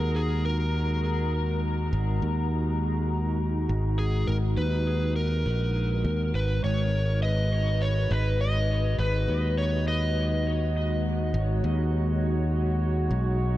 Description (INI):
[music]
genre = ambient dub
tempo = 102 BPM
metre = 4/4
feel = swing 58% on 16ths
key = G# minor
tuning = A4 = 441 Hz
[part]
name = overdriven slide guitar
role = melody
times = 0.0-11.0 s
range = G#4 to D#5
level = -32 LUFS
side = equal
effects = dub echo
[part]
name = warbly tape-like pad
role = sustained chords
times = 0.0-13.6 s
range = G#3 to A#5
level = -32 LUFS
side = equal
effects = chorus, built-in reverb, vintage 12-bit sampler grit
[part]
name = fingered electric bass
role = bass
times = 0.0-13.6 s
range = G#1 to D#2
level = -25 LUFS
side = equal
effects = none
[sound]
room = light reverb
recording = none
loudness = -24 LUFS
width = side -15 dB against mid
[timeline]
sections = 0.0-6.6 A section; 6.6-13.6 B section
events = none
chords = 0.0 D#m/G#; 6.6 G#m7